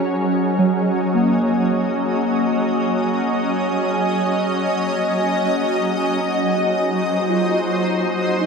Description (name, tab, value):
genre	ambient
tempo	54 BPM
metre	4/4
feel	straight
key	unclear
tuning	A4 = 440 Hz
part	shimmering ambient pad	sustained chords	0.0-8.5 s	Gb3 to Eb5	-19 LUFS	equal	chorus, built-in reverb, shimmer reverb
part	muted felt-like synth keys	arpeggios	0.0-8.5 s	Gb3 to Ab5	-22 LUFS	equal	chorus, diffuse ambient delay, shimmer reverb
room	wet cathedral reverb, RT60 5.4 s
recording	dreamy mix soaked in reverb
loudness	-17 LUFS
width	side -5 dB against mid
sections	0.0-8.5 A section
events	none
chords	0.0 Dbsus2/Gb; 5.6 Ab/Gb